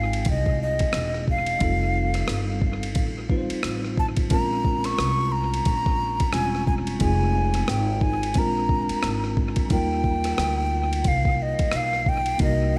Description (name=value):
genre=hip hop, jazz-hop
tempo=89 BPM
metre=4/4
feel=swing 60% on 16ths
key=Bb dorian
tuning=A4 = 440 Hz
part: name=breathy jazz flute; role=melody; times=0.0-12.8 s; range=Eb5 to Db6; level=-29 LUFS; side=equal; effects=dub echo
part: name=bell-like tine electric piano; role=accompaniment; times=0.0-12.8 s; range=C3 to C5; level=-31 LUFS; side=equal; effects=dub echo
part: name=upright bass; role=bass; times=0.0-12.8 s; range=E1 to Eb2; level=-29 LUFS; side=equal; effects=none
part: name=boom bap sampler-style drum kit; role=drums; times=0.1-12.6 s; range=hi-hat, kick drum, ride cymbal, rim click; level=-29 LUFS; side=equal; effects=none
room=digital ambience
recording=echo-heavy mix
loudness=-24 LUFS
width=mono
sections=0.0-12.8 A section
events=none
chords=0.0 Fm7; 1.6 F7; 4.3 Bbm7; 7.0 Fm7; 8.4 Bb7; 9.7 Ebmaj7